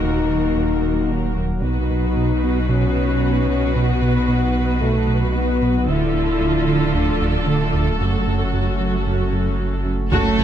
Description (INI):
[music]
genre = cinematic, hybrid orchestral and electronic film score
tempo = 113 BPM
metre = 4/4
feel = straight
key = F# dorian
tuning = A4 = 440 Hz
[part]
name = rich symphonic viola section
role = accompaniment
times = 0.0-10.4 s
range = F4 to C#5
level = -27 LUFS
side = right 1 dB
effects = none
[part]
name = airy breathy pad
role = sustained chords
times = 0.0-10.4 s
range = F3 to C#5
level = -28 LUFS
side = equal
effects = chorus
[part]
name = dark French horn section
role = sustained chords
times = 0.0-10.4 s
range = F#3 to C#5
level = -23 LUFS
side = left 4 dB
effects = none
[part]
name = smooth synth bass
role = riff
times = 0.0-10.4 s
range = D2 to B3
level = -24 LUFS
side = right 3 dB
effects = none
[part]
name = rich symphonic cello section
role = bass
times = 0.0-10.4 s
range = D#2 to A3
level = -25 LUFS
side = right 5 dB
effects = none
[part]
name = saturated sub bass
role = bass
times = 0.0-10.4 s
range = D1 to B1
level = -23 LUFS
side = equal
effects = none
[part]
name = rich symphonic violin section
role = melody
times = 10.1-10.4 s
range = A4 to F#5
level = -29 LUFS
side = left 6 dB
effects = none
[part]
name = rich studio violin section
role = second line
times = 10.1-10.4 s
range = A4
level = -23 LUFS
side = left 4 dB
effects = none
[part]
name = dark trombone section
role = sustained chords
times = 10.1-10.4 s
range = F#2 to F#3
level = -30 LUFS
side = right 5 dB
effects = none
[part]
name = warm symphonic double bass section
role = bass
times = 10.1-10.4 s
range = F#1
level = -26 LUFS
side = right 6 dB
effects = none
[part]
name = solo taiko drums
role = drums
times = 10.1-10.4 s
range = none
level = -23 LUFS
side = equal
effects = none
[sound]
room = light reverb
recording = close, detailed microphones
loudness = -17 LUFS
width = side -10 dB against mid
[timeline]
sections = 0.0-10.1 A section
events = none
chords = 0.0 D#m; 1.6 B; 5.9 Dm; 8.0 F#m